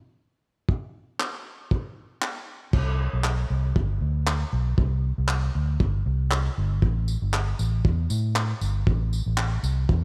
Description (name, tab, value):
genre	acoustic pop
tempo	117 BPM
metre	4/4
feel	swing 55% on 16ths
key	unclear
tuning	A4 = 440 Hz
part	cloth-damped thuddy drum kit	drums	0.7-10.0 s	crash cymbal, handclaps, kick drum, tambourine	-29 LUFS	equal	none
part	vintage muted fingered electric bass	bass	2.7-10.0 s	G1 to A2	-26 LUFS	equal	none
room	little or no reverb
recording	none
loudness	-26 LUFS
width	mono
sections	0.0-2.7 A section; 2.7-10.0 B section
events	none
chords	none